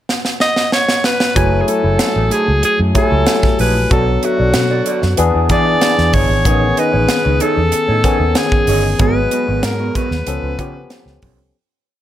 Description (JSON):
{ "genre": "polished 1980s jazz-funk pop", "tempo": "94 BPM", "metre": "4/4", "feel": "straight", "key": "F# dorian", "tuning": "A4 = 441 Hz", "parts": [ { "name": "crisp fusion drum kit", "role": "drums", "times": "0.1-11.4 s", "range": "hi-hat, kick drum, snare drum", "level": "-18 LUFS", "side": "right 1 dB", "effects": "gated reverb" }, { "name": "clear alto saxophone", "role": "melody", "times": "0.4-11.2 s", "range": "F#4 to D#5", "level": "-17 LUFS", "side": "equal", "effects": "none" }, { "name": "barky tine electric piano", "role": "accompaniment", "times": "1.4-11.6 s", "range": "D#3 to G#5", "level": "-18 LUFS", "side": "left 3 dB", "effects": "overdrive, wide subtle chorus" }, { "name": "mellow electric guitar", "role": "riff", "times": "1.4-11.4 s", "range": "A3 to E5", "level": "-24 LUFS", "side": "right 5 dB", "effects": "lush chorus" }, { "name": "vintage muted fingered electric bass", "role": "bass", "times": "1.4-11.5 s", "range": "F#1 to E3", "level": "-17 LUFS", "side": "equal", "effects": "none" } ], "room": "small room ambience", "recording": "none", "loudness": "-12 LUFS", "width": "side -12 dB against mid", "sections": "0.0-1.4 pickup bar; 1.4-11.5 verse", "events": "drum fill 0.1-1.4; fade-out 9.0-11.5", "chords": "0.0 N.C.; 1.4 F#m9; 3.9 Bm7; 5.2 E7; 6.5 Amaj9#11; 9.0 G#m9; 10.3 C#aug7" }